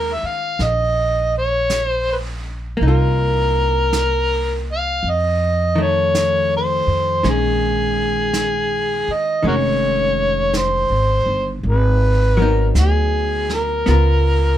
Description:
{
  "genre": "jazz ballad",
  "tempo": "54 BPM",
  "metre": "4/4",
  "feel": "swing 67% on 8ths",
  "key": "Bb minor",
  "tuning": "A4 = 440 Hz",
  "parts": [
    { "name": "overdriven harmonica", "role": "melody", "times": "0.0-14.6 s", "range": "Gb4 to F5", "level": "-18 LUFS", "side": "equal", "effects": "none" },
    { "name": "archtop guitar, miked and amplified", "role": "accompaniment", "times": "0.0-14.6 s", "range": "Eb3 to Bb4", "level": "-24 LUFS", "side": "left 2 dB", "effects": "none" },
    { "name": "upright bass", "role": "bass", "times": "0.0-14.6 s", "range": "F1 to F2", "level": "-19 LUFS", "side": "equal", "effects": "none" },
    { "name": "vintage brush drum kit", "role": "drums", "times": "0.6-14.6 s", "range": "brushed snare drum, hi-hat, snare drum", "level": "-31 LUFS", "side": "right 3 dB", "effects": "none" }
  ],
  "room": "light reverb",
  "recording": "none",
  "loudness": "-15 LUFS",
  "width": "side -11 dB against mid",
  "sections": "0.0-14.6 A section",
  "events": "none",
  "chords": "0.0 Ebm7; 2.8 Cm7; 5.0 F7; 7.2 Bbm11; 11.6 Abm7; 13.9 Db6"
}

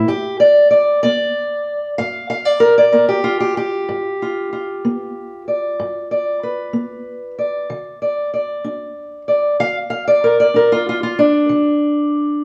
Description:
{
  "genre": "acoustic country blues, solo or duo",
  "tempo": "63 BPM (dotted quarters)",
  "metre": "12/8",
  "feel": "straight",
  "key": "G mixolydian",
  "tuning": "A4 = 441 Hz",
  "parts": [
    { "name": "fingerpicked steel-string acoustic guitar", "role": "solo", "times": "0.0-12.4 s", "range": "G2 to F5", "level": "-17 LUFS", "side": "equal", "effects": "none" }
  ],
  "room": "moderate stone room reverb, RT60 1.0 s",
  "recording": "band playing live in one room",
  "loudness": "-17 LUFS",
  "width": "mono",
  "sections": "0.0-12.4 A section",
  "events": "none",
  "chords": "0.1 G7; 7.7 N.C."
}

